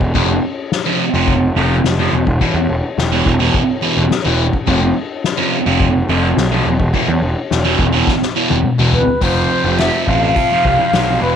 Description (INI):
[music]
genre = psychedelic rock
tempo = 106 BPM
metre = 4/4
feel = straight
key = unclear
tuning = A4 = 440 Hz
[part]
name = fuzz picked electric bass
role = bass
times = 0.0-11.3 s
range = E1 to E2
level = -17 LUFS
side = right 1 dB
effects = overdrive
[part]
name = soft-mallet drum kit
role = drums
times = 0.0-11.1 s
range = hi-hat, kick drum, ride cymbal, snare drum, toms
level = -19 LUFS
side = left 3 dB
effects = none
[part]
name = thick fuzz guitar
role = riff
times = 0.1-11.4 s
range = E2 to F3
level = -17 LUFS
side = right 1 dB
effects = distortion, phaser
[part]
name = breathy mellow jazz flute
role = melody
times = 8.9-11.4 s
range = B4 to F5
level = -16 LUFS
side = equal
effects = tape echo
[sound]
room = moderate spring reverb, RT60 1.8 s, small room ambience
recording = 1960s-style stereo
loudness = -13 LUFS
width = side -8 dB against mid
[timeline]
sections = 0.0-9.2 A section; 9.2-11.4 B section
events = drum fill 8.1-9.2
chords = 0.1 F5; 2.1 E5; 4.7 F5; 6.7 E5; 9.2 F5